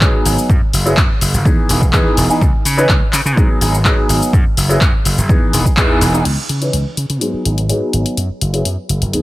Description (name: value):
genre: filtered disco house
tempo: 125 BPM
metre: 4/4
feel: straight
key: C# minor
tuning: A4 = 441 Hz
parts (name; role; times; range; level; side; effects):
- bright baby grand piano; accompaniment; 0.0-9.2 s; E3 to B4; -18 LUFS; equal; phaser, sidechain pumping, low-pass filter
- gritty slap bass; bass; 0.0-9.2 s; E1 to C#3; -17 LUFS; equal; overdrive, sidechain pumping, low-pass filter
- electronic kick drum; drums; 0.0-5.9 s; none; -14 LUFS; equal; none
- punchy analog drum machine; drums; 0.0-9.2 s; crash cymbal, handclaps, hi-hat, shaker; -19 LUFS; left 2 dB; none
room: little or no reverb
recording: none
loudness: -12 LUFS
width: side -17 dB against mid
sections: 0.0-6.3 A section; 6.3-9.2 B section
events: band accent 5.8; filter sweep 6.3-9.2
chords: 0.5 F#9sus4; 1.5 Emaj7; 2.4 C#m9; 3.4 G#m7; 4.3 F#9sus4; 5.3 Emaj7; 6.3 C#m9; 7.2 G#m7; 8.2 F#9sus4